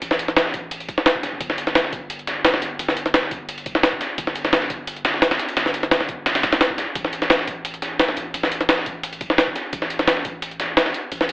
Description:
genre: liquid drum and bass.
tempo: 173 BPM.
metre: 4/4.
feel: straight.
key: unclear.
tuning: A4 = 440 Hz.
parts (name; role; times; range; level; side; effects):
long sustained 808-style bass; bass; 0.0-11.3 s; E1 to D2; -38 LUFS; equal; none.
dusty soul sampler-style drum kit; drums; 0.0-11.3 s; hi-hat, snare drum; -23 LUFS; equal; high-pass filter on hats, high-pass filter on snare, high-pass filter on room.
jungle sampler-style drum kit; drums; 0.0-11.3 s; hi-hat, snare drum; -20 LUFS; equal; none.
electronic kick drum; drums; 0.5-10.3 s; none; -35 LUFS; equal; overdrive.
room: light reverb, digital ambience.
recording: telephone sound.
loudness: -19 LUFS.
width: side -23 dB against mid.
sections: 0.0-11.3 A section.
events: none.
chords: none.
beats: | 0.02 0.37 0.71 1.06 | 1.41 1.75 2.10 2.45 | 2.79 3.14 3.49 3.83 | 4.18 4.53 4.87 5.22 | 5.57 5.92 6.26 6.61 | 6.96 7.30 7.65 8.00 | 8.34 8.69 9.04 9.38 | 9.73 10.08 10.42 10.77 | 11.12.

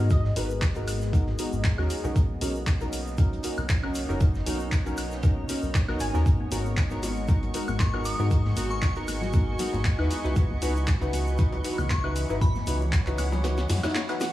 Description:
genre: deep house.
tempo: 117 BPM.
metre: 4/4.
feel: swing 54% on 16ths.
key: G# minor.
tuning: A4 = 439 Hz.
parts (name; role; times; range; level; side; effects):
soft round pluck; melody; 0.0-0.8, 6.0-6.1, 14.2-14.3 s; B4 to G#5; -37 LUFS; right 2 dB; ensemble chorus, analog delay.
warbly tape-like pad; sustained chords; 0.0-14.3 s; E3 to D#5; -37 LUFS; left 1 dB; chorus, built-in reverb, sidechain pumping.
deep mellow chord stab; stabs; 0.0-14.3 s; B3 to C#5; -32 LUFS; equal; chorus, sidechain pumping, analog delay.
round analog bass; bass; 0.0-13.8 s; F#1 to G#2; -28 LUFS; equal; sidechain pumping.
deep reggae drum kit; drums; 0.1-14.3 s; hi-hat, snare drum; -44 LUFS; right 3 dB; none.
electronic kick drum; drums; 0.1-13.0 s; none; -24 LUFS; equal; none.
egg shaker; percussion; 0.1-14.3 s; none; -46 LUFS; left 1 dB; none.
punchy analog drum machine; drums; 0.4-14.3 s; handclaps, hi-hat, snare drum, woodblock; -34 LUFS; equal; overdrive.
granular cloud pad; texture; 3.1-14.3 s; E3 to B5; -38 LUFS; right 1 dB; built-in reverb, sidechain pumping.
analog string pad; texture; 6.3-14.3 s; C#6; -42 LUFS; right 3 dB; ensemble chorus, sidechain pumping.
congas and bongos; percussion; 6.4-14.3 s; none; -38 LUFS; left 3 dB; none.
glassy synth bell; melody; 7.8-12.9 s; B5 to D#6; -36 LUFS; left 1 dB; chorus, tape echo.
room: little or no reverb.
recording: small room ambience.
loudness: -23 LUFS.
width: side -15 dB against mid.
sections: 0.0-14.3 A section.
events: kick drops out 13.4-14.3; drum fill 13.4-14.3.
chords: 0.0 G#m7; 1.9 Bmaj9; 6.0 G#m7; 10.1 C#m11.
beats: | 0.11 0.62 1.13 1.65 | 2.16 2.67 3.18 3.70 | 4.21 4.72 5.23 5.75 | 6.26 6.77 7.29 7.80 | 8.31 8.82 9.34 9.85 | 10.36 10.88 11.39 11.90 | 12.41 12.93 13.44 13.95.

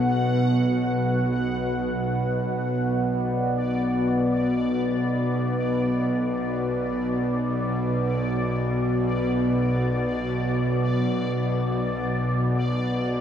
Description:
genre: dark ambient drone.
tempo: free time.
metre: none.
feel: none.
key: B minor.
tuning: A4 = 440 Hz.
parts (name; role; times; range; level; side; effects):
deep dark ambient pad; sustained chords; 0.0-13.2 s; B3 to B4; -29 LUFS; equal; chorus, built-in reverb.
bowed-like drone; drone; 0.0-13.2 s; B1 to B2; -23 LUFS; equal; built-in reverb.
bubbling stepped-filter texture; texture; 0.0-13.2 s; D5 to F#5; -32 LUFS; equal; chorus, built-in reverb.
room: wet cathedral reverb, RT60 6.3 s.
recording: none.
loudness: -22 LUFS.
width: side -9 dB against mid.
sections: 0.0-13.2 A section.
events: none.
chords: 0.0 Bm.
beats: free time.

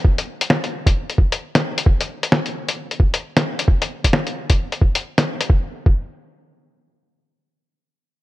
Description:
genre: future garage.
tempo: 132 BPM.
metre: 4/4.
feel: swing 60% on 16ths.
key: none.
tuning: none.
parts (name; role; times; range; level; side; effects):
electronic kick drum; drums; 0.0-6.0 s; none; -15 LUFS; equal; none.
lo-fi sampler-style drum kit; drums; 0.2-5.5 s; hi-hat, snare drum; -20 LUFS; left 1 dB; none.
room: light reverb, digital ambience.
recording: none.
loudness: -17 LUFS.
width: side -17 dB against mid.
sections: 0.0-5.5 A section; 5.5-8.2 B section.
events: none.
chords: none.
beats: | 0.04 0.49 0.95 1.40 | 1.86 2.31 2.77 3.22 | 3.68 4.13 4.59 5.04 | 5.50 5.95.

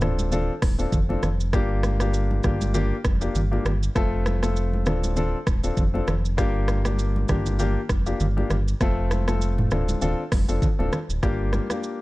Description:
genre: afrobeats.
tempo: 99 BPM.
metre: 4/4.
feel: swing 55% on 16ths.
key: G minor.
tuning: A4 = 439 Hz.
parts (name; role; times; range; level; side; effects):
warm grand piano; accompaniment; 0.0-12.0 s; A3 to A4; -28 LUFS; left 3 dB; none.
sub bass with octave; bass; 0.0-11.6 s; D1 to G1; -24 LUFS; equal; none.
afro-pop drum kit; drums; 0.0-12.0 s; hi-hat, kick drum, rim click, shaker, toms; -26 LUFS; equal; vintage 12-bit sampler grit.
congas; percussion; 0.0-11.8 s; none; -31 LUFS; right 1 dB; none.
room: digital ambience.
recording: dark, warm production.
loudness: -21 LUFS.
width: side -19 dB against mid.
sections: 0.0-11.2 A section.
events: none.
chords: 0.0 Dm7; 1.5 Gm7; 4.0 F; 4.9 Dm7; 6.4 Gm7; 8.8 F; 9.7 Dm7; 11.2 Gm7.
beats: 0.32 0.93 | 1.53 2.14 2.74 3.35 | 3.96 4.56 5.17 5.77 | 6.38 6.99 7.59 8.20 | 8.80 9.41 10.02 10.62 | 11.23 11.84.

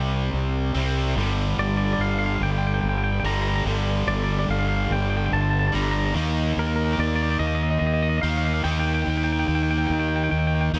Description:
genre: post-rock.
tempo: 48 BPM (dotted quarters).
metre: 6/8.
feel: straight.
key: G minor.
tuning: A4 = 442 Hz.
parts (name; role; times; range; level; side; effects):
distorted electric guitar; riff; 0.0-10.8 s; G2 to Eb4; -28 LUFS; equal; overdrive.
fuzz fingered electric bass; bass; 0.0-10.8 s; G1 to Eb2; -26 LUFS; equal; overdrive.
twangy electric guitar; melody; 1.6-10.7 s; Bb4 to Bb5; -30 LUFS; equal; tape echo.
room: light reverb.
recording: none.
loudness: -23 LUFS.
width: mono.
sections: 0.0-10.8 A section.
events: none.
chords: 0.0 C5; 1.2 G5; 6.2 Eb.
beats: | 1.17 2.41 | 3.66 4.91 | 6.15 7.40 | 8.65 9.90.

